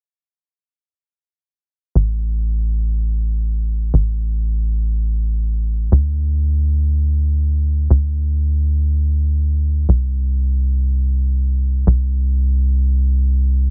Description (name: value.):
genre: techno.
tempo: free time.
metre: none.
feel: none.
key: A minor.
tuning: A4 = 439 Hz.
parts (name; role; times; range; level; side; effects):
tight sequencer bass; bass; 2.0-13.7 s; A1 to D2; -18 LUFS; equal; none.
room: little or no reverb.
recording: heavily compressed radio sound.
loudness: -18 LUFS.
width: mono.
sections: 2.0-13.7 A section.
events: none.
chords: none.